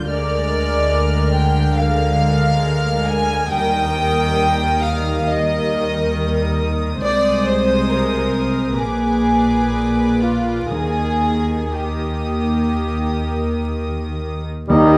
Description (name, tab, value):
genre	classical, slow romantic movement for symphony orchestra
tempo	57-72 BPM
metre	4/4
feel	rubato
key	Eb major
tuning	A4 = 440 Hz
part	warm symphonic violin section	melody	0.0-14.4 s	D6 to G6	-33 LUFS	equal	none
part	rich studio viola section	accompaniment	0.0-14.4 s	G3 to C5	-25 LUFS	equal	none
part	dark symphonic double bass section	bass	0.0-15.0 s	Bb1 to Eb2	-25 LUFS	equal	none
part	warm studio cello section	bass	0.0-15.0 s	Bb2 to Eb3	-26 LUFS	equal	none
part	warm symphonic violin section	second line	0.1-14.2 s	F4 to Ab5	-24 LUFS	equal	none
part	timpani	percussion	10.7-15.0 s	Eb3	-25 LUFS	equal	none
part	clear oboe	second line	14.7-15.0 s	Eb5	-20 LUFS	equal	none
part	mellow clarinet	second line	14.7-15.0 s	none	barely audible	none	none
part	small flute group	second line	14.7-15.0 s	Bb5	-26 LUFS	equal	none
part	warm bassoon	accompaniment	14.7-15.0 s	G3	-24 LUFS	equal	none
part	dark trombone section	sustained chords	14.7-15.0 s	none	barely audible	none	none
part	mellow French horn section	sustained chords	14.7-15.0 s	Eb4	-19 LUFS	equal	none
part	mellow trumpet	stabs	14.7-15.0 s	G4	-22 LUFS	equal	none
part	mellow tuba	bass	14.7-15.0 s	Eb2	-20 LUFS	equal	none
room	moderate scoring stage reverb, RT60 1.9 s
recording	vinyl crackle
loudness	-19 LUFS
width	mono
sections	0.0-14.7 A section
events	none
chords	0.1 Bb7/D; 3.5 Eb; 7.0 Ab/C; 8.8 Bb7b9; 10.7 Eb